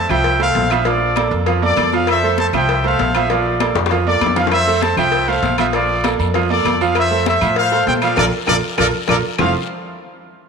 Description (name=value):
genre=latin, salsa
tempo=197 BPM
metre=4/4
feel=straight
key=F major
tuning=A4 = 443 Hz
part: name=clear trumpet section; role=melody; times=0.0-9.5 s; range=F4 to A5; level=-18 LUFS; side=left 1 dB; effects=none
part: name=bright grand piano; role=accompaniment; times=0.0-9.5 s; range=F3 to F5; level=-20 LUFS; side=right 10 dB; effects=none
part: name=upright bass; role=bass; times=0.0-9.5 s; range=F1 to Bb2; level=-22 LUFS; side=left 1 dB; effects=none
part: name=agogo bells and timbales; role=percussion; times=0.1-9.5 s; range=none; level=-28 LUFS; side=right 9 dB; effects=none
part: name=claves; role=percussion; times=0.1-9.5 s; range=none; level=-28 LUFS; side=left 12 dB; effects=none
part: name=congas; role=percussion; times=0.1-9.5 s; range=none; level=-26 LUFS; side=left 11 dB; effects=none
part: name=cowbell and bongos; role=percussion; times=0.2-9.5 s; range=none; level=-24 LUFS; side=left 11 dB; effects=none
part: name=guiro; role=percussion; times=4.5-9.5 s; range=none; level=-33 LUFS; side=left 13 dB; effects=none
room=moderate echo chamber reverb, RT60 2.4 s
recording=1960s-style stereo with parts hard left and right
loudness=-14 LUFS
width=side -5 dB against mid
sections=0.0-9.4 A section; 9.4-10.5 B section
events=drum fill 3.8-4.5, 8.5-9.4; band accent 8.2-9.4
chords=0.0 Fmaj7; 0.9 Bbmaj7; 2.1 Fmaj7; 3.3 Bbmaj7; 4.5 Fmaj7; 5.7 Bbmaj7; 7.0 Fmaj7; 8.2 Bbmaj7; 9.4 Fmaj7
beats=0.25 0.55 | 0.86 1.16 1.47 1.77 | 2.08 2.38 2.69 2.99 | 3.30 3.60 3.91 4.21 | 4.52 4.82 5.13 5.43 | 5.74 6.04 6.34 6.65 | 6.95 7.26 7.56 7.87 | 8.17 8.47 8.78 9.08 | 9.39